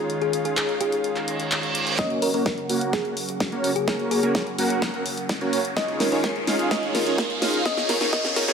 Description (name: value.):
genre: EDM, festival progressive house.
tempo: 127 BPM.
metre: 4/4.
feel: straight.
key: F# major.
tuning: A4 = 442 Hz.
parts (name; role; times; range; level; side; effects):
lush unison pad; sustained chords; 0.0-8.5 s; C#3 to F#4; -31 LUFS; equal; chorus, sidechain pumping.
big-room dance drum kit; drums; 0.1-8.5 s; handclaps, hi-hat, snare drum; -28 LUFS; equal; studio reverb.
thumb-piano-like synth pluck; melody; 0.2-8.5 s; G#4 to D#5; -27 LUFS; left 2 dB; chorus, digital delay.
reverse cymbal and riser; sound effects; 1.2-8.5 s; none; -30 LUFS; right 2 dB; none.
supersaw chords; riff; 2.0-8.5 s; A#3 to F#5; -25 LUFS; right 1 dB; sidechain pumping, low-pass filter, digital delay.
electronic kick drum; drums; 2.0-8.2 s; none; -28 LUFS; equal; high-pass filter on kick, studio reverb.
room: moderate lush hall reverb, RT60 1.9 s, digital ambience.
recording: high-pass filter.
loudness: -21 LUFS.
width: side -6 dB against mid.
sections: 0.0-2.0 A section; 2.0-8.5 B section.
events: reverse cymbal 1.2-2.0; build-up 2.0-8.5; drum fill 2.0-8.5; riser 2.0-8.5; filter sweep on supersaw synth 2.0-8.5; filter sweep on analog synth pad 2.0-8.5; filter sweep 2.0-8.5.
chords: 0.0 C#add9; 2.0 F#; 5.8 C#add9.